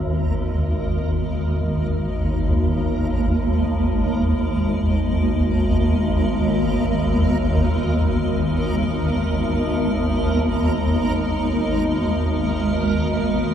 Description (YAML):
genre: dark ambient drone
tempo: free time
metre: none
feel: none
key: G# minor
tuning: A4 = 440 Hz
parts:
  - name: granular cloud pad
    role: sustained chords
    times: 0.0-13.5 s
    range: G#3 to D#5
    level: -24 LUFS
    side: right 1 dB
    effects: built-in reverb
  - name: swarming drone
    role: drone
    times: 0.0-13.5 s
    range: G#1 to D#2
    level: -19 LUFS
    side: equal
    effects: built-in reverb
  - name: backwards swelling texture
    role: texture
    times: 0.0-13.5 s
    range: A#4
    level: -34 LUFS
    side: right 4 dB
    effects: built-in reverb
  - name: solo taiko drums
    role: percussion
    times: 2.5-2.7 s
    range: none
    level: -25 LUFS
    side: equal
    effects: none
room: wet spring reverb, RT60 2.4 s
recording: none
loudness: -18 LUFS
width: side -9 dB against mid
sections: 0.0-13.5 A section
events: fade-in on ambient pad 0.0-13.5; fade-in on synth texture 0.0-13.5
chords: 0.0 G#madd9